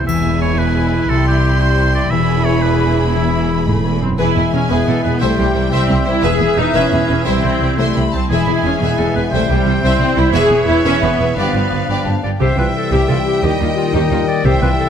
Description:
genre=cinematic, heroic adventure film score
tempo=117 BPM (dotted quarters)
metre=6/8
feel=straight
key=unclear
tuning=A4 = 440 Hz
part: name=bright oboe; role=second line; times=0.0-14.9 s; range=E4 to E5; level=-24 LUFS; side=right 2 dB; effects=none
part: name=warm French horn section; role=sustained chords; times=0.0-14.9 s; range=E3 to G#4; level=-23 LUFS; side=left 4 dB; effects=none
part: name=concert harp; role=arpeggios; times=0.0-14.9 s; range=E2 to C6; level=-22 LUFS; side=left 11 dB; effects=none
part: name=rich symphonic cello section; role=bass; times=0.0-14.7 s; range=C2 to Eb3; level=-21 LUFS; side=right 2 dB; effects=none
part: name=rich symphonic violin section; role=melody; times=0.1-14.9 s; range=E5 to C6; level=-27 LUFS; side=left 2 dB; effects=none
part: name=clear symphonic violin section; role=second line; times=0.1-14.9 s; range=E4 to E5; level=-25 LUFS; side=left 3 dB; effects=none
part: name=clear symphonic viola section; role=accompaniment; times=0.1-14.7 s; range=G3 to G#4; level=-20 LUFS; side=right 1 dB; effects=none
part: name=clear symphonic double bass section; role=bass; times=0.1-14.7 s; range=E1 to Eb2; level=-19 LUFS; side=right 3 dB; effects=none
part: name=triangle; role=percussion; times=0.1-0.7 s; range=none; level=-36 LUFS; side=left 4 dB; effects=none
part: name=bright clarinet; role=second line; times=4.2-14.9 s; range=D4 to D5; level=-26 LUFS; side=left 1 dB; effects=none
part: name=mellow hollow silver concert flute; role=second line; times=4.2-14.9 s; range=E5 to B5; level=-26 LUFS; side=equal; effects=none
part: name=mellow trombone section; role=sustained chords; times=12.4-14.9 s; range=Bb2 to E3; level=-26 LUFS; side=right 4 dB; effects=none
room=moderate scoring stage reverb, RT60 1.9 s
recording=none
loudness=-13 LUFS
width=side -8 dB against mid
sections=0.0-4.2 A section; 4.2-12.4 A section; 12.4-14.9 B section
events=none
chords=0.1 E; 1.1 C; 2.1 E; 5.2 C; 6.2 E; 7.3 C; 8.3 E; 9.3 C; 10.3 E; 11.4 G7; 12.4 C; 13.4 Eb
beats=| 0.08 0.59 | 1.10 1.61 | 2.12 2.63 | 3.15 3.67 | 4.19 4.71 | 5.22 5.73 | 6.24 6.75 | 7.26 7.78 | 8.30 8.81 | 9.32 9.83 | 10.34 10.85 | 11.37 11.89 | 12.41 12.92 | 13.43 13.94 | 14.45

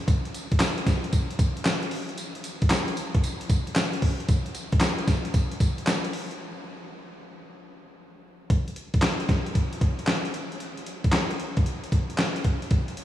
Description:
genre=R&B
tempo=114 BPM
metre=4/4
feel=swing 66% on 16ths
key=none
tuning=none
part: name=clean 12-bit digital drum machine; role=drums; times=0.1-13.0 s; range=handclaps, hi-hat, kick drum, snare drum, tambourine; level=-24 LUFS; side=equal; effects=none
room=moderate huge ambient reverb, RT60 8.0 s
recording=studio reverb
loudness=-23 LUFS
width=side -12 dB against mid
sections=0.0-8.5 A section; 8.5-13.0 B section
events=break 6.4-8.5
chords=none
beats=| 0.08 0.60 1.13 1.66 | 2.18 2.71 3.24 3.76 | 4.29 4.82 5.34 5.87 | 6.39 6.92 7.45 7.97 | 8.50 9.03 9.55 10.08 | 10.61 11.13 11.66 12.18 | 12.71

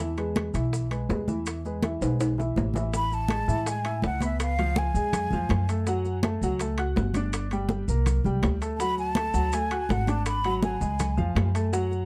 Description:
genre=Afro-Cuban jazz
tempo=164 BPM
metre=4/4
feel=straight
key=A major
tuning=A4 = 440 Hz
part: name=warm concert grand piano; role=accompaniment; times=0.0-12.0 s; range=E3 to F#6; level=-33 LUFS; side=equal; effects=none
part: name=upright bass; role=bass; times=0.0-12.1 s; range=G1 to A2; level=-30 LUFS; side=equal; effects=none
part: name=bongos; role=percussion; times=0.0-12.1 s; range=none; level=-39 LUFS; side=equal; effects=none
part: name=congas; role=percussion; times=0.0-12.1 s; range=none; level=-33 LUFS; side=equal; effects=none
part: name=maracas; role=percussion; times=0.2-12.1 s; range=none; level=-46 LUFS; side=equal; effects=none
part: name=timbales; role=percussion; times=0.2-11.7 s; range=none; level=-36 LUFS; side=equal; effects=none
part: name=breathy concert flute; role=melody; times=3.0-5.7, 8.8-11.5 s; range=E5 to B5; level=-33 LUFS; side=equal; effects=plate reverb, tape echo
room=light reverb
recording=dark, warm production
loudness=-27 LUFS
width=mono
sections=0.0-2.9 A section; 2.9-12.1 B section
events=drum fill 2.0-2.9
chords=0.0 E; 2.9 Amaj7; 4.4 C#7; 5.9 F#m; 7.3 Gm; 8.1 Csus2; 8.8 D; 10.3 G#m7b5; 11.0 C#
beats=| 0.00 0.36 0.73 1.10 | 1.47 1.83 2.20 2.57 | 2.94 3.30 3.67 4.04 | 4.40 4.77 5.13 5.50 | 5.87 6.23 6.60 6.97 | 7.33 7.70 8.07 8.43 | 8.80 9.16 9.53 9.90 | 10.26 10.63 11.00 11.36 | 11.73

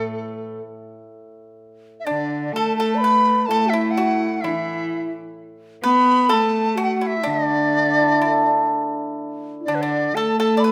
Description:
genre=chinese traditional, Chinese chamber ensemble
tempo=63 BPM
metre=2/4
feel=rubato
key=A zhi mode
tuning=A4 = 443 Hz
part: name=large dizi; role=melody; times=0.0-10.7 s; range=A4 to B5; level=-23 LUFS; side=equal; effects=none
part: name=mellow xiao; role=second line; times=0.0-10.7 s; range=D4 to D5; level=-28 LUFS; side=equal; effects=none
part: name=pipa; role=second line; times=0.0-10.7 s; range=A3 to D5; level=-29 LUFS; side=equal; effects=none
part: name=rich cello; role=second line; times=0.0-10.7 s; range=A2 to B3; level=-27 LUFS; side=equal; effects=none
part: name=hammered dulcimer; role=accompaniment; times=0.0-10.2 s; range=A2 to A4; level=-27 LUFS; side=equal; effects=none
room=moderate recital hall reverb, RT60 1.7 s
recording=none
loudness=-20 LUFS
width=mono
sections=0.0-1.6 A section; 1.6-10.7 B section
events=none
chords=none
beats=0.62 | 1.59 2.54 | 3.49 4.42 | 5.36 6.31 | 7.26 8.22 | 9.19 10.15

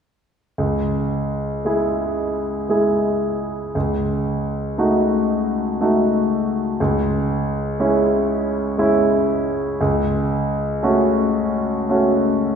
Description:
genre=classical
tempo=59 BPM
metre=3/4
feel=uneven beats, rubato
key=C# minor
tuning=A4 = 441 Hz
part: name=clear concert grand piano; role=accompaniment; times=0.6-12.6 s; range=C#2 to G#4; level=-17 LUFS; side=equal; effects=none
room=wet concert hall reverb, RT60 1.8 s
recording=heard from further back in the room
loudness=-18 LUFS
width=side -7 dB against mid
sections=0.6-12.6 A section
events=none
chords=0.6 C#m; 3.7 D#m7b5/C#; 6.8 C#m; 9.8 F#m/C#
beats=| 0.59 1.65 2.70 | 3.75 4.78 5.79 | 6.79 7.79 8.78 | 9.79 10.82 11.89

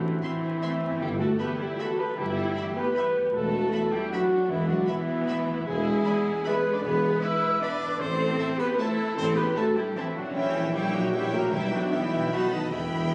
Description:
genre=classical, orchestral ballroom waltz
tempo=154 BPM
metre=3/4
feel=uneven beats, rubato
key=E minor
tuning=A4 = 440 Hz
part: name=mellow clarinet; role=second line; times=0.0-13.1 s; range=G3 to E4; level=-41 LUFS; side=equal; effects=none
part: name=small flute group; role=second line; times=0.0-13.1 s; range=D#5 to E6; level=-37 LUFS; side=equal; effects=none
part: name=warm studio viola section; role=accompaniment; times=0.0-13.1 s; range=B3 to B4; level=-34 LUFS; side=equal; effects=none
part: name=dark French horn section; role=sustained chords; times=0.0-13.1 s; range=D#4 to E5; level=-33 LUFS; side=equal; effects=none
part: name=concert harp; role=arpeggios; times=0.0-13.1 s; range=E2 to B4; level=-46 LUFS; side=equal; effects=none
part: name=clear trumpet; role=stabs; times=0.0-13.1 s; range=D#4 to E5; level=-39 LUFS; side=equal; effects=none
part: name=warm studio cello section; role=bass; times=0.0-13.1 s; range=D#3 to E4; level=-34 LUFS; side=equal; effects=none
part: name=warm studio double bass section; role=bass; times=0.0-13.1 s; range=E1 to E2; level=-39 LUFS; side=equal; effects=none
part: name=warm tuba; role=bass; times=0.0-13.1 s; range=E1 to B1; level=-37 LUFS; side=equal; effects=none
part: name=rich studio violin section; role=melody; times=0.2-13.1 s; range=G5 to C6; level=-42 LUFS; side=equal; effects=none
part: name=rich studio violin section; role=second line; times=0.2-13.1 s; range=C5 to A5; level=-40 LUFS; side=equal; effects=none
part: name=warm trombone section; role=sustained chords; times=0.2-13.1 s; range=D#3 to D4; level=-44 LUFS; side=equal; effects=none
part: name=timpani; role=percussion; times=11.5-13.1 s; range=E2 to B2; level=-40 LUFS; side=equal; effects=none
room=wet concert hall reverb, RT60 2.0 s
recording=recorded on a phone in the room, club reverb, vinyl crackle, compression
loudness=-27 LUFS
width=mono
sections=0.0-13.1 A section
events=timpani fill 12.7-13.1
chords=0.0 Am; 1.0 Em/G; 3.3 Em; 5.7 E7; 8.0 Am; 10.3 A#dim7; 11.5 Em/B; 12.3 B7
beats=0.23 0.63 | 1.01 1.39 1.79 | 2.17 2.56 2.96 | 3.34 3.72 4.12 | 4.50 4.88 5.28 | 5.66 6.05 6.45 | 6.83 7.22 7.62 | 8.00 8.39 8.79 | 9.17 9.56 9.96 | 10.35 10.74 11.14 | 11.53 11.92 12.33 | 12.73 13.14

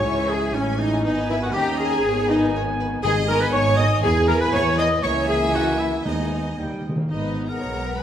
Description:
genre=quick classical-period movement for symphony orchestra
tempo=120 BPM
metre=2/4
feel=rubato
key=G# minor from 3.0 s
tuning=A4 = 439 Hz
part: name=rich studio violin section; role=melody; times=0.0-8.0 s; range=C#5 to D#6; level=-34 LUFS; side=left 3 dB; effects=none
part: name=clear clarinet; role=second line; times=0.0-8.0 s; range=C#4 to D#5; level=-27 LUFS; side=left 1 dB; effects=none
part: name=clear studio violin section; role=second line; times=0.0-8.0 s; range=D#4 to G#5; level=-31 LUFS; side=left 3 dB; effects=none
part: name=large flute ensemble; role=second line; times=0.0-8.0 s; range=B4 to D#6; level=-29 LUFS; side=left 4 dB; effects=none
part: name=warm oboe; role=second line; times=0.0-8.0 s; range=C#4 to D#5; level=-29 LUFS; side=equal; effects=none
part: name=rich studio viola section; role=accompaniment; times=0.0-8.0 s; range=D#3 to C#4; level=-30 LUFS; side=right 2 dB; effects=none
part: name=warm French horn section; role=sustained chords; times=0.0-8.0 s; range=G#3 to E4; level=-28 LUFS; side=left 3 dB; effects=none
part: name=warm trumpet section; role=stabs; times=0.0-6.8 s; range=G5 to A#5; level=-31 LUFS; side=right 1 dB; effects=none
part: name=rich studio cello section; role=bass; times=0.0-8.0 s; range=G#2 to D#5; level=-26 LUFS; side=right 2 dB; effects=none
part: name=rich studio double bass section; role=bass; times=0.0-8.0 s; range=G#1 to E2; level=-26 LUFS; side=right 2 dB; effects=none
part: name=timpani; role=percussion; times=3.0-3.7, 6.1-7.0 s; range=G#2 to D#3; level=-29 LUFS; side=equal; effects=none
room=wet recital hall reverb, RT60 1.5 s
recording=none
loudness=-19 LUFS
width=side -10 dB against mid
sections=0.0-7.1 A section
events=timpani fill 6.6-7.1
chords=0.0 C#m; 1.1 G#m; 1.5 D#7; 2.0 G#m; 4.0 E; 5.0 A#m7b5/C#; 6.1 G#m/D#; 6.6 D#; 7.1 G#m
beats=| 0.04 0.55 | 1.05 1.55 | 2.04 2.54 | 3.04 3.53 | 4.03 4.53 | 5.03 5.54 | 6.05 6.58 | 7.10 7.61

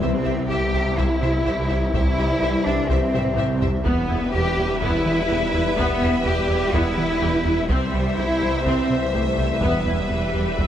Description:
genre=cinematic, hybrid orchestral and electronic film score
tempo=125 BPM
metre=4/4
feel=straight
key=unclear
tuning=A4 = 440 Hz
part: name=rich symphonic violin section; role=melody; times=0.0-10.7 s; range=E5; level=-32 LUFS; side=left 2 dB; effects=none
part: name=rich symphonic violin section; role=second line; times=0.0-10.7 s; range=B4 to C5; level=-31 LUFS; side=left 1 dB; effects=none
part: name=clear symphonic viola section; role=accompaniment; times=0.0-10.7 s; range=B3 to E5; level=-32 LUFS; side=equal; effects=none
part: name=dark trombone section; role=sustained chords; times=0.0-10.7 s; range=E3 to G3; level=-33 LUFS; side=right 4 dB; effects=none
part: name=mellow French horn section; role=sustained chords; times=0.0-10.7 s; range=B4 to E5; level=-30 LUFS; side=left 6 dB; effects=none
part: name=shimmering ambient pad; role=sustained chords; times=0.0-10.7 s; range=G3 to E5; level=-31 LUFS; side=left 2 dB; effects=none
part: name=rubbery square bass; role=riff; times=0.0-10.7 s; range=C2 to E3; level=-28 LUFS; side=right 1 dB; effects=none
part: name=rich symphonic double bass section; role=bass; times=0.0-10.7 s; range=C2 to E2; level=-29 LUFS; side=right 2 dB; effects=none
part: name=snarling distorted saw bass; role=bass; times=0.0-10.7 s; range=E1 to C2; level=-28 LUFS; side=equal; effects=distortion
part: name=warm symphonic cello section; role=bass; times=0.0-10.7 s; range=G3 to G4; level=-24 LUFS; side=right 1 dB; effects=none
part: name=taiko ensemble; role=drums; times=0.0-10.7 s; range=none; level=-28 LUFS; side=equal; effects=none
room=moderate scoring stage reverb, RT60 1.7 s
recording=none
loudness=-19 LUFS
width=side -10 dB against mid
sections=0.0-10.7 A section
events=drum fill 3.1-3.9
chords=0.0 C; 3.9 Em; 7.7 C; 9.6 Em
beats=| 0.02 0.50 0.98 1.46 | 1.94 2.42 2.90 3.38 | 3.86 4.34 4.82 5.30 | 5.78 6.26 6.74 7.22 | 7.70 8.18 8.66 9.14 | 9.62 10.10 10.58

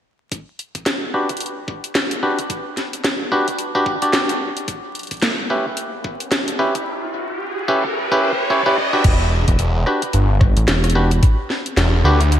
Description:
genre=glitch hop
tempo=110 BPM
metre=4/4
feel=swing 59% on 16ths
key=unclear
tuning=A4 = 441 Hz
part: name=drum and bass drum kit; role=drums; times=0.3-12.4 s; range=crash cymbal, hi-hat, rim click, snare drum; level=-22 LUFS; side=equal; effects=gated reverb
part: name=electronic kick drum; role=drums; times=0.3-11.4 s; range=none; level=-17 LUFS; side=equal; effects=high-pass filter on kick, high-pass filter on room
part: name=bright clav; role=stabs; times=1.1-12.2 s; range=C#4 to D5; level=-21 LUFS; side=equal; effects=sidechain pumping, low-pass filter, ping-pong delay
part: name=riser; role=sound effects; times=5.8-9.0 s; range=none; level=-24 LUFS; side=right 1 dB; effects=none
part: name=phased detuned saw bass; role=bass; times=9.0-12.4 s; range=E1 to D2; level=-15 LUFS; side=equal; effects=phaser, tube saturation
part: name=rubbery square bass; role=bass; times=9.5-11.2 s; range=E1 to A1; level=-16 LUFS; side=equal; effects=none
room=moderate lush hall reverb, RT60 2.5 s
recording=bright 1980s-style digital production, vinyl crackle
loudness=-16 LUFS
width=side -10 dB against mid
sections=0.3-9.0 A section; 9.0-12.4 B section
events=filter sweep on clav 0.3-9.0; riser 5.8-9.0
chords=0.3 Dadd11; 4.7 C#m7b5; 9.0 Em7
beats=| 0.32 0.86 1.41 1.95 | 2.50 3.04 3.59 4.14 | 4.68 5.23 5.77 6.32 | 6.86 7.41 7.95 8.50 | 9.04 9.59 10.14 10.68 | 11.23 11.77 12.32

